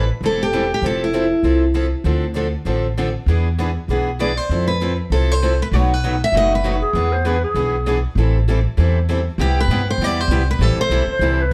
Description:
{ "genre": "acoustic string swing (jazz manouche)", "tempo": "196 BPM", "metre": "4/4", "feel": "swing 59% on 8ths", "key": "A minor", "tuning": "A4 = 444 Hz", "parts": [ { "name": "picked steel-string acoustic guitar", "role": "melody", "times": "0.0-1.6, 4.2-6.8, 9.4-11.2 s", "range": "E4 to E5", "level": "-23 LUFS", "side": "equal", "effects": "none" }, { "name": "picked steel-string acoustic guitar", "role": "accompaniment", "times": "0.0-11.4 s", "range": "B2 to A4", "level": "-27 LUFS", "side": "equal", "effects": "none" }, { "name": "picked steel-string acoustic guitar", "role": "accompaniment", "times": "0.0-11.4 s", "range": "B2 to B4", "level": "-29 LUFS", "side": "equal", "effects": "none" }, { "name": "upright bass", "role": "bass", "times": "0.0-11.5 s", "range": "E1 to G2", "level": "-21 LUFS", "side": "equal", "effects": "none" }, { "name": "breathy clarinet", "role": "second line", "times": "6.8-8.0, 11.1-11.5 s", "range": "G#4 to C5", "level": "-23 LUFS", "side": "equal", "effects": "none" } ], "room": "moderate studio reverb, RT60 0.7 s", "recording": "heard from further back in the room", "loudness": "-18 LUFS", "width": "mono", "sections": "0.0-9.4 A section; 9.4-11.5 B section", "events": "none", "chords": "0.0 Am7; 0.8 Fmaj7; 2.1 Dm7; 3.3 E7; 4.5 Fmaj7; 5.7 B7; 6.9 E7; 8.2 Am7; 9.4 Cmaj7; 10.6 Am7" }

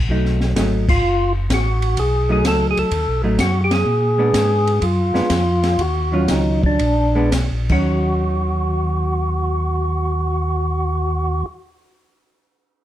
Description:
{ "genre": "soul jazz organ trio", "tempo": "108-127 BPM", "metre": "4/4", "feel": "swing 69% on 8ths", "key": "Eb minor", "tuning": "A4 = 441 Hz", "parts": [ { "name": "mellow tonewheel organ", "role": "bass", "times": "0.0-11.4 s", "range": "F#1 to Bb2", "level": "-20 LUFS", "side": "equal", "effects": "chorus vibrato, slow rotary speaker" }, { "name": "vintage hollow-body jazz guitar", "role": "accompaniment", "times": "0.1-11.5 s", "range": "Eb3 to F4", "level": "-22 LUFS", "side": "right 1 dB", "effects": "none" }, { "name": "open jazz drum kit", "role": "drums", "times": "0.1-7.8 s", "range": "crash cymbal, hi-hat, kick drum, ride cymbal, snare drum", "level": "-23 LUFS", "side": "equal", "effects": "none" }, { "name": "percussive tonewheel organ", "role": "melody", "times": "0.9-11.5 s", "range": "D4 to A4", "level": "-20 LUFS", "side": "equal", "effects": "slow rotary speaker, overdrive" } ], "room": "light reverb", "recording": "dark, warm production", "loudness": "-16 LUFS", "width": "side -12 dB against mid", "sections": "0.0-7.9 A section; 7.9-12.3 B section", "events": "band accent 0.8, 3.6; slowing down 3.9-7.9", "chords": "0.1 B7; 3.9 Bb7b9; 5.8 Ebm9; 6.8 Bb7b9; 7.6 Ebm7" }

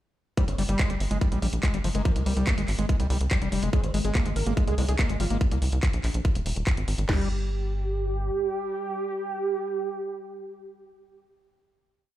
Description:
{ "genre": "psychedelic trance", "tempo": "143 BPM", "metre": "4/4", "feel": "straight", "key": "unclear", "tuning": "A4 = 440 Hz", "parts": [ { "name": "formant-sweep wobble bass", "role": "second line", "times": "0.4-5.0 s", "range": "Bb3 to D4", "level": "-43 LUFS", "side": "equal", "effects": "ensemble chorus, cassette tape, sidechain pumping, high-pass filter, tape echo" }, { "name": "screaming distorted acid line", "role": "riff", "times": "0.4-7.3 s", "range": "F3 to Bb3", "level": "-31 LUFS", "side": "moving between left 7 dB and right 2 dB", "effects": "distortion, chorus, auto-pan, sidechain pumping, digital delay" }, { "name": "drum and bass drum kit", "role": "drums", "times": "0.4-7.2 s", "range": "crash cymbal, kick drum, snare drum", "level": "-24 LUFS", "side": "equal", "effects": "none" }, { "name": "drum and bass drum kit", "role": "drums", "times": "0.4-7.1 s", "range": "handclaps, hi-hat", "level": "-34 LUFS", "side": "equal", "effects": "none" }, { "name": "tight sequencer bass", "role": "bass", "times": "0.5-8.3 s", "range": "Eb1 to C2", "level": "-26 LUFS", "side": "equal", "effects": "none" }, { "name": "wide unison lead", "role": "melody", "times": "3.7-11.2 s", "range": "Ab3 to Bb4", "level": "-30 LUFS", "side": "right 3 dB", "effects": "phaser, sidechain pumping, tape echo" } ], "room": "digital ambience", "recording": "played on a big sound system in a bare room, large studio reverb", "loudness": "-24 LUFS", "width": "side -13 dB against mid", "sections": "0.4-7.1 groove; 7.1-10.4 final chord", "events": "none", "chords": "0.4 Fmadd9 (rootless); 3.7 Ab5; 7.1 N.C." }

